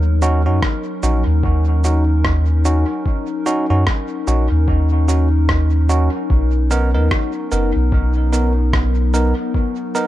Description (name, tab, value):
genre	ambient dub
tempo	74 BPM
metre	4/4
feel	swing 59% on 16ths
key	Eb minor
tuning	A4 = 439 Hz
part	warbly tape-like pad	sustained chords	0.0-10.1 s	F#3 to Bb4	-23 LUFS	left 2 dB	chorus, built-in reverb
part	soft dub sub bass	bass	0.0-9.3 s	F#1 to Gb2	-15 LUFS	equal	none
part	bell-like tine electric piano	stabs	0.2-10.1 s	B3 to A#4	-23 LUFS	right 3 dB	dub echo
part	electronic cabasa and rim click	drums	0.2-10.1 s	none	-25 LUFS	right 1 dB	overdrive, dub echo
part	electronic kick drum	drums	0.6-9.7 s	none	-19 LUFS	equal	overdrive
room	little or no reverb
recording	dark, warm production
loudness	-14 LUFS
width	side -14 dB against mid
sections	0.0-10.1 A section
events	none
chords	0.0 Ebm7; 6.3 Bmaj7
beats	0.63 1.44 2.25 | 3.06 3.87 4.68 5.49 | 6.30 7.11 7.92 8.73 | 9.54